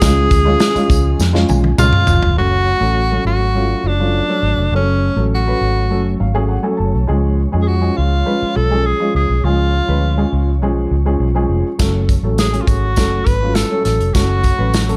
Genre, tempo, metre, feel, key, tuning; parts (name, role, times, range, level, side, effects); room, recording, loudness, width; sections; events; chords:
uptempo 1960s-style soul; 102 BPM; 4/4; straight; F# harmonic minor; A4 = 440 Hz
warm tenor saxophone; melody; 0.0-15.0 s; C#4 to B4; -21 LUFS; equal
dark upright piano; accompaniment; 0.0-15.0 s; E#3 to A5; -23 LUFS; equal
mellow tonewheel organ; sustained chords; 0.0-15.0 s; E#3 to C#5; -31 LUFS; equal
vintage muted fingered electric bass; bass; 0.0-14.9 s; E#1 to E#2; -19 LUFS; equal; tube saturation
natural country drum kit; drums; 0.0-2.4, 11.8-15.0 s; hi-hat, kick drum, snare drum, toms; -19 LUFS; equal
tambourine; percussion; 0.0-2.2, 11.8-14.9 s; -33 LUFS; equal
light reverb; dark, warm production; -15 LUFS; mono
0.0-2.4 A section; 2.4-15.0 B section
drum fill 1.2-2.4; upright piano fill 1.2-2.4, 5.9-7.1
0.0 C#; 2.4 F#m; 7.1 C#; 11.8 F#m